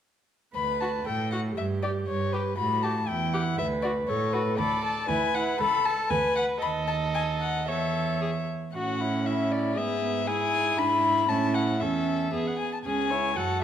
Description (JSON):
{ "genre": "quick classical-period movement for string quartet", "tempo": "118 BPM", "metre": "2/4", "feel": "straight", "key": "D major, A major from 4.6 s", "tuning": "A4 = 438 Hz", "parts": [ { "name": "warm violin", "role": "melody", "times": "0.6-13.6 s", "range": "B4 to B5", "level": "-28 LUFS", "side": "left 6 dB", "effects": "none" }, { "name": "warm viola", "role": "accompaniment", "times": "0.6-13.6 s", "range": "B3 to D#5", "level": "-31 LUFS", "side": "right 4 dB", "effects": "none" }, { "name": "rich cello", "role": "bass", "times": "0.6-13.6 s", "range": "C#2 to A2", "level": "-31 LUFS", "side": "right 3 dB", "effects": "none" }, { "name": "dark violin", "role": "second line", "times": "0.8-13.6 s", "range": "E4 to C#5", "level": "-32 LUFS", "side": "equal", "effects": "none" } ], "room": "wet recital hall reverb, RT60 1.5 s", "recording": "none", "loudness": "-24 LUFS", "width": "side -9 dB against mid", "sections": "0.6-8.8 A section; 8.8-13.6 B section", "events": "none", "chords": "0.6 D; 1.6 G; 2.6 A5; 3.6 D5; 4.6 Bm7/D; 5.1 E7/D; 5.6 A/C#; 6.1 Bm/D; 6.6 D#dim; 7.7 A/E; 8.8 A; 9.8 E/G#; 10.8 E7/G#; 11.3 A; 11.8 A/E; 12.3 E; 12.9 C#m" }